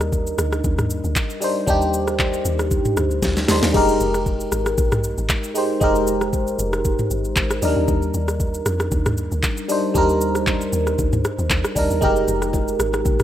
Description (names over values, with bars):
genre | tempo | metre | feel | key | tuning
amapiano | 116 BPM | 4/4 | swing 55% on 16ths | unclear | A4 = 440 Hz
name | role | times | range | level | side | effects
FM electric piano | accompaniment | 0.0-13.2 s | Gb3 to Eb5 | -21 LUFS | equal | chorus, phaser
deep log drum bass | bass | 0.0-13.2 s | F1 to F2 | -24 LUFS | equal | none
smooth R&B drum kit | drums | 0.0-13.2 s | crash cymbal, handclaps, hi-hat, kick drum, rim click, shaker, snare drum, toms | -22 LUFS | equal | none
congas and bongos | percussion | 12.0-13.2 s | none | -34 LUFS | equal | none
room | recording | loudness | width
light reverb, digital ambience | rough home demo mix | -18 LUFS | side -11 dB against mid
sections
0.0-13.2 A section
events
drum fill 3.2-3.7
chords
0.0 Ebmaj7; 3.7 Fm11; 7.6 Ebmaj7; 12.0 Fm11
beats
0.12 0.64 1.16 | 1.67 2.19 2.71 3.23 | 3.74 4.26 4.78 5.29 | 5.81 6.33 6.85 7.36 | 7.88 8.40 8.92 9.43 | 9.95 10.47 10.98 11.50 | 12.02 12.54 13.05